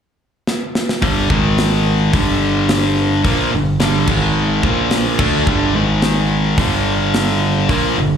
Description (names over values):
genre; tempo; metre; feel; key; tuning
hard rock; 108 BPM; 4/4; straight; unclear; A4 = 439 Hz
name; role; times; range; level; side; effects
tight metal drum kit; drums; 0.5-7.8 s; crash cymbal, hi-hat, kick drum, snare drum; -20 LUFS; equal; none
overdriven semi-hollow guitar; riff; 1.0-8.2 s; G2 to D4; -18 LUFS; right 8 dB; slapback echo
tight distorted guitar; riff; 1.0-8.2 s; G2 to D4; -18 LUFS; left 9 dB; distortion, slapback echo
modern bright picked electric bass; bass; 1.0-8.2 s; G1 to D2; -19 LUFS; equal; none
room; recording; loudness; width
light reverb; live gig heard through the venue's PA, club reverb; -13 LUFS; side -8 dB against mid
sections
0.0-1.0 A section; 1.0-8.2 B section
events
drum fill 0.5-1.0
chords
0.0 N.C.; 1.0 G5; 1.3 Ab5; 2.1 Gm; 4.1 Ab5; 4.6 Bb5; 5.2 G5; 5.8 Ab5; 6.6 Gm